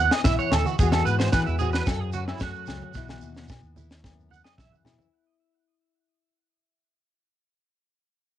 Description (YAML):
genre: highlife guitar band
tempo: 111 BPM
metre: 4/4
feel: straight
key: unclear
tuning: A4 = 438 Hz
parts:
  - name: nylon-string guitar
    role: accompaniment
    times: 0.0-7.3 s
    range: E2 to F#4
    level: -32 LUFS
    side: left 7 dB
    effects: cassette tape
  - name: electric guitar at the edge of break-up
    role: arpeggios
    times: 0.0-4.7 s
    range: E4 to F#5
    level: -27 LUFS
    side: right 8 dB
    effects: ensemble chorus, cassette tape, tape echo
  - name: fingered electric bass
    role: bass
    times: 0.0-5.0 s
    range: B1 to E3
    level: -28 LUFS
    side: equal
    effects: none
  - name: tight funk drum kit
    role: drums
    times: 0.1-5.0 s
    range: kick drum, snare drum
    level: -25 LUFS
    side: equal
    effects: none
  - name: agogo bells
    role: percussion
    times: 0.1-5.0 s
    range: none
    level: -35 LUFS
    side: left 13 dB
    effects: none
  - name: shekere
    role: percussion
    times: 0.3-5.1 s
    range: none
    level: -34 LUFS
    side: right 4 dB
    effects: none
  - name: congas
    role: percussion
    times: 0.5-5.1 s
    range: none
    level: -35 LUFS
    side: right 5 dB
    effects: none
room: light reverb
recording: home recording on cassette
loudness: -21 LUFS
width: side -11 dB against mid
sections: 0.0-5.1 A section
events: fade-out 0.0-5.1; clean electric guitar solo 0.0-5.1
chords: 0.0 Bsus4; 0.8 Eadd9; 1.9 F#m; 3.0 Bsus4